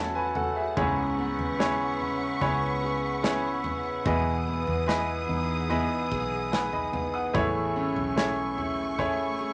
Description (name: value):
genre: pop ballad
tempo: 73 BPM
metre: 4/4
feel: straight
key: E major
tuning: A4 = 439 Hz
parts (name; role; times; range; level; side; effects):
- bright baby grand piano; accompaniment; 0.0-9.5 s; G#2 to D#6; -31 LUFS; equal; none
- warm studio string section; sustained chords; 0.0-9.5 s; A3 to D#6; -38 LUFS; equal; none
- fingerpicked steel-string acoustic guitar; arpeggios; 0.0-9.5 s; F#2 to G#4; -34 LUFS; equal; none
- vintage muted fingered electric bass; bass; 0.0-9.5 s; A1 to E2; -38 LUFS; equal; none
- natural country drum kit; drums; 0.4-9.2 s; kick drum, snare drum, toms; -36 LUFS; equal; none
room: wet club reverb, RT60 0.7 s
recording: nothing above 10.3 kHz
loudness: -28 LUFS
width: mono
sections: 0.0-9.5 A section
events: none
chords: 0.0 F#m7; 0.8 C#m7; 4.1 Emaj7; 7.3 Amaj7